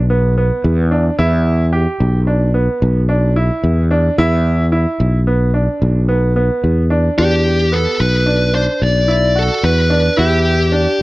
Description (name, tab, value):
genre	progressive instrumental, progressive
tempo	220 BPM (eighths)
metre	11/8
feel	straight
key	E minor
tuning	A4 = 437 Hz
part	sustaining fretless electric bass	bass	0.0-10.9 s	B1 to E2	-14 LUFS	equal	none
part	clear grand piano	arpeggios	0.1-11.0 s	B3 to G4	-19 LUFS	right 2 dB	none
part	high-gain lead guitar	melody	7.2-11.0 s	G4 to D5	-15 LUFS	left 1 dB	distortion, ping-pong delay
room	light reverb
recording	worn, warbling old tape, cassette tape, warbly pitch drift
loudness	-12 LUFS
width	side -20 dB against mid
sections	0.0-7.2 A section; 7.2-11.0 B section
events	none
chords	0.0 E7(no3); 7.2 Em7